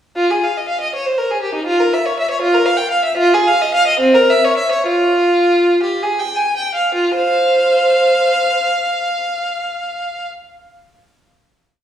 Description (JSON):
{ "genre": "classical, baroque-style suite movement for unaccompanied violin", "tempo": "52-82 BPM (dotted quarters)", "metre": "6/8", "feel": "rubato", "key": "F minor", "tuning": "A4 = 440 Hz", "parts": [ { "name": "clear violin", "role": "solo", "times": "0.2-10.3 s", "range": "C4 to Ab5", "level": "-13 LUFS", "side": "equal", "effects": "none" } ], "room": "wet recital hall reverb, RT60 1.5 s", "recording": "heard from further back in the room, studio reverb", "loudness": "-13 LUFS", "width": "side -10 dB against mid", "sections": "0.2-6.9 A section; 6.9-11.4 final chord", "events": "slowing down 2.4-6.9", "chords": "0.2 Fm; 1.7 Fsus4; 3.2 Fm; 4.0 C7; 4.9 Fm; 6.9 F5", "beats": "| 0.17 0.93 | 1.68 2.42 | 3.19 4.00 | 4.87 5.84 | 6.95 8.07 | 9.18" }